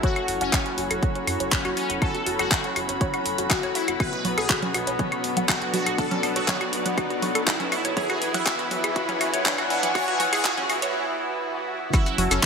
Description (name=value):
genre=melodic techno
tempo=121 BPM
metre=4/4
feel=straight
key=F# minor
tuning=A4 = 440 Hz
part: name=resonant sweep polysynth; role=melody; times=0.0-12.5 s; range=C#4 to C#5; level=-30 LUFS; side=equal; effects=chorus, phaser, ping-pong delay
part: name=deep dark ambient pad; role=sustained chords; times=0.0-12.5 s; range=D4 to A5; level=-35 LUFS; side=left 2 dB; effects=chorus, built-in reverb, sidechain pumping
part: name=analog pluck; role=arpeggios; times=0.0-12.5 s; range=C#4 to F#5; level=-31 LUFS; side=equal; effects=chorus, vintage 12-bit sampler grit, sidechain pumping, ping-pong delay
part: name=brassy analog pad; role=stabs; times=0.0-12.5 s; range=B2 to F#4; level=-30 LUFS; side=right 1 dB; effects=chorus, sidechain pumping, ping-pong delay
part: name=electronic kick drum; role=drums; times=0.0-12.5 s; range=none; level=-25 LUFS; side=equal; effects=none
part: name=house drum kit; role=drums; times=0.0-12.5 s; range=claves, congas, handclaps, hi-hat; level=-26 LUFS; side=equal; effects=gated reverb
part: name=riser and swell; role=sound effects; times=0.0-11.9 s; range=none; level=-36 LUFS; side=right 1 dB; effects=none
part: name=dark studio string section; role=texture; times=0.0-12.5 s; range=B3 to B5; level=-31 LUFS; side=left 3 dB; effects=sidechain pumping
part: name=tight sequencer bass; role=bass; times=0.3-12.4 s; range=E1 to F#2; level=-36 LUFS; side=equal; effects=sidechain pumping
part: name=maracas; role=percussion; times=11.9-12.5 s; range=none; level=-30 LUFS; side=left 3 dB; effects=none
room=wet lush hall reverb, RT60 1.6 s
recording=bright 1980s-style digital production, high-pass filter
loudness=-22 LUFS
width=side -6 dB against mid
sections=0.0-11.9 A section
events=build-up 0.0-11.9; filter sweep on synth arpeggio sound 0.0-11.9; filter sweep on ambient pad 0.0-11.9; break 10.9-11.9; swell 10.9-11.9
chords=0.0 F#m7; 4.0 Bm7; 8.0 E6; 11.9 F#m7